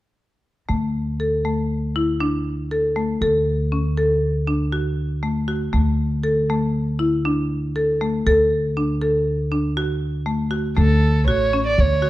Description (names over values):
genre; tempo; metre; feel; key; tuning
contemporary instrumental, chamber music in an uneven meter; 119 BPM; 5/4; straight; D major; A4 = 441 Hz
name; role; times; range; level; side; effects
marimba with medium hard mallets; arpeggios; 0.7-12.1 s; A3 to A4; -21 LUFS; left 1 dB; none
upright bass; bass; 0.7-12.1 s; A1 to D2; -22 LUFS; right 1 dB; none
dark violin; melody; 10.8-12.1 s; A4 to D5; -20 LUFS; right 3 dB; none
room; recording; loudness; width
moderate recital hall reverb, RT60 1.3 s; dark, warm production; -18 LUFS; side -16 dB against mid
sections
0.7-10.8 A section; 10.8-12.1 B section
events
none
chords
0.7 D; 10.8 Dmaj7